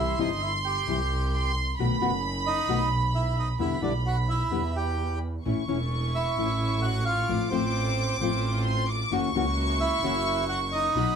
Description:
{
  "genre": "tango",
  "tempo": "132 BPM",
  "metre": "4/4",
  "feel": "rubato",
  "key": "unclear",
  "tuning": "A4 = 439 Hz",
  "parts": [
    { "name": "bandoneon", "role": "melody", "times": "0.0-11.2 s", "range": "C4 to G5", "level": "-29 LUFS", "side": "right 3 dB", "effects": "none" },
    { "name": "warm studio violin section", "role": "second line", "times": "0.0-11.2 s", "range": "B5 to D6", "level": "-31 LUFS", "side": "right 2 dB", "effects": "none" },
    { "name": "nylon-string guitar", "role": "accompaniment", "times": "0.0-11.1 s", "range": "B2 to F#4", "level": "-28 LUFS", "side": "left 6 dB", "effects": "none" },
    { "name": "warm double bass", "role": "bass", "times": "0.0-11.1 s", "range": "E1 to E2", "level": "-28 LUFS", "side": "right 1 dB", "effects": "none" },
    { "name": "rich chamber string section", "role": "stabs", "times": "5.4-11.1 s", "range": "A3 to F#4", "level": "-37 LUFS", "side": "right 1 dB", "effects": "none" }
  ],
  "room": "moderate small room reverb, RT60 0.5 s",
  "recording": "band playing live in one room",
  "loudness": "-24 LUFS",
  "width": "side -7 dB against mid",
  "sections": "0.0-11.2 A section",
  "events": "none",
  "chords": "0.0 C; 1.8 B7; 3.6 Em7; 5.4 A; 7.3 F/A; 9.1 F#7",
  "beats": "0.43 0.89 1.34 | 1.79 2.24 2.69 3.15 | 3.60 4.05 4.51 4.98 | 5.44 5.91 6.37 6.83 | 7.29 7.75 8.21 8.66 | 9.12 9.57 10.03 10.48 | 10.95"
}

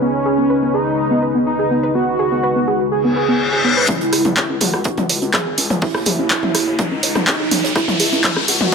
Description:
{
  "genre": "melodic techno",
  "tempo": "124 BPM",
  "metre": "4/4",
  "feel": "straight",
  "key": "C# minor",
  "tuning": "A4 = 440 Hz",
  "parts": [
    { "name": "wide unison lead", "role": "melody", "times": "0.0-8.7 s", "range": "C#4 to G#4", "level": "-19 LUFS", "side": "right 2 dB", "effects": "lush chorus, digital delay" },
    { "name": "deep dark ambient pad", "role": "sustained chords", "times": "0.0-8.7 s", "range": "C#3 to D#5", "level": "-25 LUFS", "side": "equal", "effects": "chorus, built-in reverb, sidechain pumping" },
    { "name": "soft round pluck", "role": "arpeggios", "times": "0.0-8.5 s", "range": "B3 to C#5", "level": "-21 LUFS", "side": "equal", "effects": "chorus, sidechain pumping, tape echo" },
    { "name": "reverse cymbal and riser", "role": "sound effects", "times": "3.1-8.7 s", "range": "none", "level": "-21 LUFS", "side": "left 3 dB", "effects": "none" },
    { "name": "damped 70s drum kit", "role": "drums", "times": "3.9-8.7 s", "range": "hi-hat, snare drum", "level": "-30 LUFS", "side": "right 6 dB", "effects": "sidechain pumping on hats, high-pass filter on hats, high-pass filter on snare, high-pass filter on room" },
    { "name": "electronic kick drum", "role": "drums", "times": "3.9-8.7 s", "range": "none", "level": "-24 LUFS", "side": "equal", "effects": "high-pass filter on kick, high-pass filter on room" },
    { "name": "punchy analog drum machine", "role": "drums", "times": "3.9-8.7 s", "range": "handclaps, hi-hat, rim click, toms", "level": "-18 LUFS", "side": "equal", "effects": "none" },
    { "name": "gritty driven synth bass", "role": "bass", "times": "4.0-8.7 s", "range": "G#1 to D#2", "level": "-27 LUFS", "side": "left 1 dB", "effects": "sidechain pumping, high-pass filter" }
  ],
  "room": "moderate lush hall reverb, RT60 1.8 s",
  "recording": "none",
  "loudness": "-14 LUFS",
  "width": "side -5 dB against mid",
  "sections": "0.0-3.9 A section; 3.9-8.7 B section",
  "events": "reverse cymbal 3.1-3.9; build-up 3.9-8.7; riser 3.9-8.7; filter sweep on synth arpeggio sound 3.9-8.7",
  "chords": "0.0 G#m/C#; 3.9 C#m",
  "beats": "| 0.01 0.50 0.98 1.47 | 1.95 2.43 2.92 3.40 | 3.88 4.37 4.85 5.34 | 5.82 6.30 6.79 7.27 | 7.76 8.24 8.72"
}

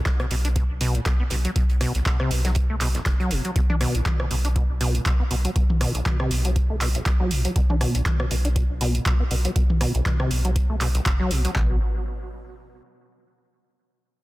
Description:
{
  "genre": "acid house",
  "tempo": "120 BPM",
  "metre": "4/4",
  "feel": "swing 56% on 16ths",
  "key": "unclear",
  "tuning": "A4 = 440 Hz",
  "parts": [
    { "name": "booming analog drum machine", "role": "drums", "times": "0.1-11.7 s", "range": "handclaps, kick drum", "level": "-23 LUFS", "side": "equal", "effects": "none" },
    { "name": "booming analog drum machine", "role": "drums", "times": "0.1-11.5 s", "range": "handclaps, hi-hat, rim click, toms", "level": "-29 LUFS", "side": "equal", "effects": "none" },
    { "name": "warm soul drum kit", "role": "drums", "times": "0.1-3.4 s", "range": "hi-hat, snare drum", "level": "-38 LUFS", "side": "right 2 dB", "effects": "sidechain pumping on hats, high-pass filter on hats, high-pass filter on snare, high-pass filter on room" },
    { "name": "acid bass, saw", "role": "riff", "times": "0.2-11.8 s", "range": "B1 to D4", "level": "-28 LUFS", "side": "equal", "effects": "tube saturation, analog chorus, sidechain pumping, tape echo" },
    { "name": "warm sub bass", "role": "bass", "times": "0.3-11.8 s", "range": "F#1 to B1", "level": "-24 LUFS", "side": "equal", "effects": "tube saturation, sidechain pumping" }
  ],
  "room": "digital ambience",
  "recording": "dense, heavily limited modern master",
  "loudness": "-20 LUFS",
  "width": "side -18 dB against mid",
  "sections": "0.0-11.6 A section; 11.6-13.6 B section",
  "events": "filter sweep on acid bass 0.0-11.6",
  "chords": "none",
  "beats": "0.06 0.56 1.06 | 1.56 2.06 2.56 3.06 | 3.56 4.06 4.56 5.06 | 5.56 6.06 6.56 7.06 | 7.56 8.06 8.56 9.06 | 9.56 10.06 10.56 11.06 | 11.56"
}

